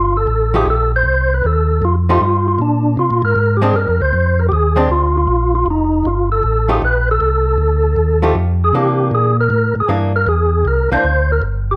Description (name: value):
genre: soul jazz organ trio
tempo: 156 BPM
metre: 4/4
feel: swing 66% on 8ths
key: F mixolydian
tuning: A4 = 440 Hz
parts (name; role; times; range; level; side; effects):
- percussive tonewheel organ; melody; 0.0-11.8 s; D4 to C5; -18 LUFS; equal; chorus vibrato, fast rotary speaker
- mellow tonewheel organ; bass; 0.0-11.8 s; F1 to C3; -18 LUFS; equal; slow rotary speaker
- archtop guitar, miked and amplified; accompaniment; 0.5-11.0 s; E3 to G4; -21 LUFS; equal; none
room: light reverb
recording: none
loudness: -15 LUFS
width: mono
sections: 0.0-11.8 A section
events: none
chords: 0.0 F9; 2.6 Bb9; 5.7 F9; 8.7 C9